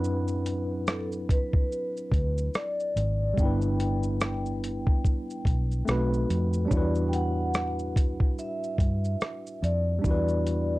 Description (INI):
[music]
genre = lo-fi hip hop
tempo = 72 BPM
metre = 4/4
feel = swing 60% on 16ths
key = E minor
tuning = A4 = 439 Hz
[part]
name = tine electric piano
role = accompaniment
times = 0.0-10.8 s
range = F#3 to F#5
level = -31 LUFS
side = equal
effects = overdrive, fast stereo tremolo, plate reverb
[part]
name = vintage muted fingered electric bass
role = bass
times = 0.0-10.8 s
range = G1 to G2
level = -28 LUFS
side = equal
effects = tube saturation
[part]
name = dusty soul sampler-style drum kit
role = drums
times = 0.0-10.7 s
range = hi-hat, kick drum, rim click, shaker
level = -26 LUFS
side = equal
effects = none
[part]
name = vibraphone with soft mallets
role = melody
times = 0.9-10.8 s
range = A4 to G5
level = -34 LUFS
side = left 1 dB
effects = analog delay
[sound]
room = light reverb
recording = dry, gritty hardware recording, cassette tape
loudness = -25 LUFS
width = side -19 dB against mid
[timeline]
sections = 0.0-10.8 A section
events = none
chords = 0.0 D13/F#; 3.4 G6; 5.9 B7b9; 6.7 Em9